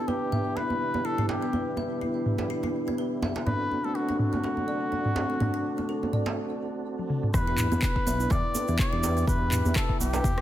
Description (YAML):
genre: afro house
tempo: 124 BPM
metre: 4/4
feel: swing 56% on 16ths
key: E minor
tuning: A4 = 440 Hz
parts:
  - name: trumpet with cup mute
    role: melody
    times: 0.0-10.4 s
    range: F#4 to D5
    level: -32 LUFS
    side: left 1 dB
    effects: ping-pong delay
  - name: dark analog pad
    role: sustained chords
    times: 0.0-10.4 s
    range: B3 to D6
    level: -38 LUFS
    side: left 1 dB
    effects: chorus, sidechain pumping
  - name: kalimba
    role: arpeggios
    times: 0.0-10.4 s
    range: A3 to E5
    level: -32 LUFS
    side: left 1 dB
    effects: sidechain pumping, ping-pong delay
  - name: mellow tonewheel organ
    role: stabs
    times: 0.0-10.3 s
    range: B3 to B4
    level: -34 LUFS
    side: right 3 dB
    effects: chorus vibrato, sidechain pumping, low-pass filter, ping-pong delay
  - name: djembe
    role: percussion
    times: 0.1-10.3 s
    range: none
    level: -33 LUFS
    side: right 2 dB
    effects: none
  - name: afro-pop drum kit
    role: drums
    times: 0.3-10.4 s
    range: handclaps, rim click, toms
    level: -30 LUFS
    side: equal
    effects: low-pass filter on toms, low-pass filter on snare
  - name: smooth gliding synth bass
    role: bass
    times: 7.3-10.4 s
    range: B1 to E2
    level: -29 LUFS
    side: equal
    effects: sidechain pumping
  - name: electronic kick drum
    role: drums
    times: 7.3-10.3 s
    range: none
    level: -27 LUFS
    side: equal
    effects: none
  - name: tube shaker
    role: percussion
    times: 7.3-10.4 s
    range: none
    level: -37 LUFS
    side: right 4 dB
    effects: none
room: light reverb, studio reverb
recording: none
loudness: -25 LUFS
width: side -12 dB against mid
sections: 0.0-7.3 A section; 7.3-10.4 B section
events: break 6.4-7.3; drum fill 7.0-7.3; drop 7.3-10.4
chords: 0.0 Em7; 3.5 D7; 7.3 Em7